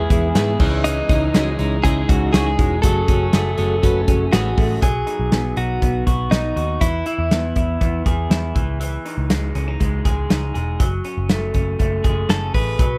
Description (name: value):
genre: jangly indie pop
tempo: 120 BPM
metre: 4/4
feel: straight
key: unclear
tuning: A4 = 439 Hz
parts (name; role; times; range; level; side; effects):
- direct-recorded clean electric guitar; melody; 0.0-8.0, 12.3-13.0 s; D#4 to B4; -26 LUFS; equal; phaser
- combo organ; accompaniment; 0.0-4.8 s; A3 to B4; -28 LUFS; equal; none
- twelve-string electric guitar; accompaniment; 0.0-4.8 s; F#2 to G#4; -28 LUFS; equal; none
- electric guitar through a small old amp; arpeggios; 0.0-13.0 s; E3 to G#4; -28 LUFS; equal; warbly pitch drift
- vintage muted picked electric bass; bass; 0.0-13.0 s; E1 to G#2; -24 LUFS; equal; none
- modern studio drum kit; drums; 0.1-12.9 s; crash cymbal, hi-hat, kick drum, snare drum; -22 LUFS; equal; none
room: studio ambience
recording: none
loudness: -19 LUFS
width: mono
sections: 0.0-4.8 A section; 4.8-13.0 B section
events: none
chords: 0.0 E; 0.6 C#madd9; 2.8 F#madd9; 4.8 B; 6.8 E; 8.6 C#madd9; 10.8 F#madd9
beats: 0.35 | 0.85 1.34 1.84 2.34 | 2.84 3.33 3.83 4.33 | 4.82 5.32 5.82 6.32 | 6.82 7.31 7.81 8.31 | 8.81 9.30 9.80 10.30 | 10.80 11.30 11.80 12.29 | 12.79